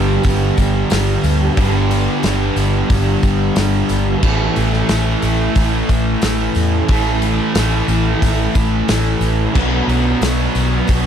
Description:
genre	rock, shoegaze and dream pop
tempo	90 BPM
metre	4/4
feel	straight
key	A major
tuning	A4 = 440 Hz
part	crunchy overdriven guitar	riff	0.0-11.1 s	G2 to A4	-20 LUFS	right 11 dB	reverse reverb
part	distorted electric guitar	riff	0.0-11.1 s	G2 to B3	-22 LUFS	left 1 dB	overdrive
part	thick fuzz guitar	riff	0.0-11.1 s	G2 to B3	-22 LUFS	left 11 dB	distortion, wide subtle chorus
part	vintage muted fingered electric bass	bass	0.0-11.1 s	G1 to E2	-18 LUFS	equal	none
part	loose indie drum kit	drums	0.2-11.0 s	crash cymbal, hi-hat, kick drum, snare drum	-20 LUFS	equal	none
part	tambourine	percussion	0.2-11.0 s	none	-36 LUFS	left 7 dB	none
room	small room ambience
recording	dark, warm production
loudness	-13 LUFS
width	side -8 dB against mid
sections	0.0-11.1 A section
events	none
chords	0.0 G; 4.2 A; 9.6 Bm

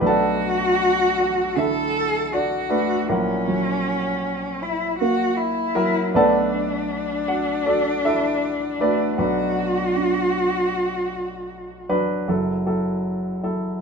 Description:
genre	acoustic folk-pop ballad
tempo	78 BPM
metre	4/4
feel	straight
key	B minor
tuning	A4 = 440 Hz
part	warm grand piano	melody	0.0-13.8 s	F#1 to A5	-22 LUFS	right 1 dB	none
part	warm cello	second line	0.0-11.9 s	C#4 to A4	-22 LUFS	left 1 dB	none
part	felt-muted upright piano	arpeggios	1.6-11.1 s	D3 to D4	-27 LUFS	right 5 dB	none
room	moderate studio reverb, RT60 0.9 s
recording	minimal, uncompressed stereo recording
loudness	-19 LUFS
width	side -5 dB against mid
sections	0.0-12.3 A section; 12.3-13.8 B section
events	none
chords	0.0 Bm7; 3.1 F#7/A#; 6.1 Bm7; 9.2 Bm; 12.3 F#m7

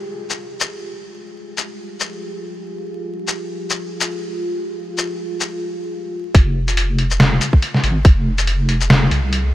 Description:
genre	deep dubstep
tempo	141 BPM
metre	4/4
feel	swing 57% on 16ths, half-time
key	F minor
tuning	A4 = 442 Hz
part	deep dark ambient pad	sustained chords	0.0-9.5 s	F4 to Ab4	-28 LUFS	equal	chorus, built-in reverb, vintage 12-bit sampler grit
part	trip hop sampler-style drum kit	drums	0.3-9.4 s	hi-hat, shaker, snare drum	-17 LUFS	left 1 dB	none
part	deep soft wobble bass	bass	6.3-9.5 s	F1 to C2	-18 LUFS	equal	chorus
part	electronic kick drum	drums	6.3-8.1 s	none	-9 LUFS	equal	none
room	light reverb, digital ambience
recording	vinyl crackle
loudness	-16 LUFS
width	side -15 dB against mid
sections	0.0-6.3 A section; 6.3-9.5 B section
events	filter sweep on ambient pad 0.0-6.3; build-up 6.3-9.5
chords	0.0 Fmadd9

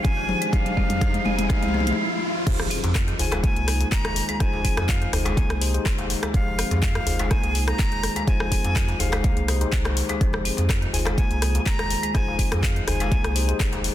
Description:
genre	afro house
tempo	124 BPM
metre	4/4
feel	straight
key	F minor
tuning	A4 = 440 Hz
part	breathy bright jazz flute	melody	0.0-13.6 s	F5 to Bb5	-30 LUFS	equal	ping-pong delay
part	marimba with hard mallets	arpeggios	0.0-13.8 s	Eb3 to F4	-31 LUFS	right 1 dB	sidechain pumping, ping-pong delay
part	mellow tine electric piano	stabs	0.0-13.9 s	Eb4 to C5	-33 LUFS	left 5 dB	sidechain pumping, ping-pong delay
part	warm sub bass	bass	0.0-13.9 s	F1 to F2	-26 LUFS	equal	sidechain pumping
part	afro-pop drum kit	drums	0.0-13.9 s	crash cymbal, handclaps, hi-hat, rim click, toms	-28 LUFS	left 2 dB	none
part	electronic kick drum	drums	0.0-13.7 s	none	-23 LUFS	equal	none
part	riser and impact	sound effects	0.0-4.4 s	none	-30 LUFS	equal	none
part	djembe	percussion	2.6-13.8 s	none	-32 LUFS	left 1 dB	none
room	light reverb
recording	dense, heavily limited modern master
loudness	-20 LUFS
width	side -12 dB against mid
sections	0.0-2.5 A section; 2.5-13.9 B section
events	build-up 0.0-2.5; drum fill 0.0-2.0; riser 0.0-2.5; filter sweep on marimba 0.0-2.5; filter sweep on tine electric piano 0.0-2.5; stop 2.0-2.5; drop 2.5-13.9; impact 2.5-4.4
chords	0.0 Fm9

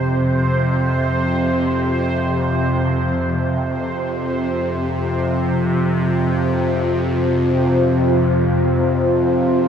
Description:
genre	dark ambient drone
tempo	free time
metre	none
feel	none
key	unclear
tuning	A4 = 440 Hz
part	bowed-like drone	drone	0.0-9.7 s	F2 to C3	-17 LUFS	equal	built-in reverb, phaser
part	bubbling stepped-filter texture	texture	0.0-9.7 s	C5	-27 LUFS	right 3 dB	chorus, built-in reverb
part	deep dark ambient pad	sustained chords	4.7-9.7 s	F4 to F5	-20 LUFS	equal	chorus, built-in reverb
room	wet huge ambient reverb, RT60 7.1 s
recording	none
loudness	-16 LUFS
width	side -8 dB against mid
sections	0.0-9.7 A section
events	fade-out on synth texture 0.0-9.7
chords	0.0 F5

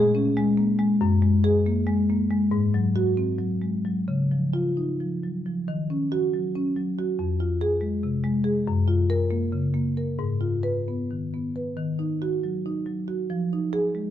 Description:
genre	classical, contemporary piece for solo marimba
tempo	255-290 BPM (eighths)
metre	7/8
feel	rubato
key	Eb minor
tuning	A4 = 441 Hz
part	marimba with soft mallets	solo	0.0-14.1 s	F2 to Cb5	-22 LUFS	left 1 dB	none
room	moderate stone room reverb, RT60 1.3 s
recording	dark, warm production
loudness	-22 LUFS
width	side -11 dB against mid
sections	0.0-5.7 A section; 5.7-14.1 B section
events	none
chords	0.0 Bbm7; 1.0 Gbadd9; 2.5 Ab7; 4.1 Dbadd9; 5.7 Ebm7; 7.2 Fm; 8.7 Gbmaj7; 10.2 Abm6; 11.8 Ebm; 13.3 Fm7

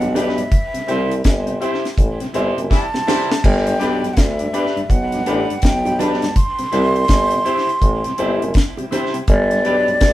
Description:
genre	roots reggae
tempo	82 BPM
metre	4/4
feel	swing 62% on 16ths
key	unclear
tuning	A4 = 441 Hz
part	breathy mellow silver concert flute	melody	0.0-10.1 s	D5 to C6	-21 LUFS	right 1 dB	none
part	tonewheel organ	accompaniment	0.0-10.0 s	G2 to G4	-28 LUFS	left 1 dB	chorus vibrato, slow rotary speaker
part	clear tuba	bass	0.0-10.1 s	F#1 to D2	-20 LUFS	equal	none
part	deep reggae drum kit	drums	0.0-10.1 s	crash cymbal, hi-hat, kick drum, snare drum	-18 LUFS	equal	tape echo
part	bongos	percussion	0.0-10.1 s	none	-27 LUFS	right 2 dB	none
part	dark upright piano	stabs	0.1-9.9 s	D4 to C5	-24 LUFS	left 2 dB	none
part	electric guitar at the edge of break-up	accompaniment	0.2-9.9 s	D4 to C5	-28 LUFS	equal	tape echo
part	clear horn section	second line	2.7-3.3 s	C3 to E4	-24 LUFS	left 1 dB	none
room	moderate small room reverb, RT60 0.5 s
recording	band playing live in one room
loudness	-15 LUFS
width	side -15 dB against mid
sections	0.0-10.1 A section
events	band accent 0.5-3.4; drum fill 2.7-3.4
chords	0.0 G; 0.5 C; 3.4 G; 6.4 C; 9.3 G

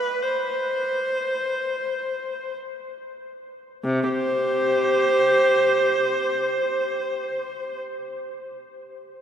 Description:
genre	classical, baroque-style suite movement for unaccompanied viola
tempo	free time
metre	none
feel	none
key	unclear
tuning	A4 = 440 Hz
part	rich viola	solo	0.0-7.8 s	C3 to C5	-22 LUFS	equal	none
room	wet cathedral reverb, RT60 6.6 s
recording	none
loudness	-21 LUFS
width	side -9 dB against mid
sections	0.0-3.8 A section; 3.8-8.7 B section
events	slowing down 0.0-3.8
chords	none

